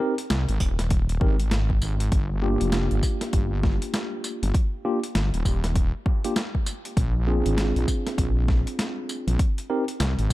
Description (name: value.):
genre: glitch hop.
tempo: 99 BPM.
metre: 4/4.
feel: swing 61% on 16ths.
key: unclear.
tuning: A4 = 440 Hz.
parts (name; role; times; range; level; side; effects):
mellow tine electric piano; stabs; 0.0-9.8 s; Bb3 to Bb4; -29 LUFS; equal; medium stereo tremolo, sidechain pumping, dub echo.
boom bap sampler-style drum kit; drums; 0.2-10.3 s; hi-hat, snare drum, tambourine; -30 LUFS; equal; overdrive.
wobble bass; bass; 0.3-10.3 s; Eb1 to C2; -23 LUFS; equal; chorus, tube saturation.
electronic kick drum; drums; 0.6-10.3 s; none; -23 LUFS; equal; overdrive.
room: little or no reverb.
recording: dark, warm production.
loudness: -22 LUFS.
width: side -17 dB against mid.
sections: 0.0-10.3 A section.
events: none.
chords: 0.0 Abmaj9; 2.1 Gm7; 4.5 Ebmaj9; 7.0 Bb7; 9.4 Abmaj9.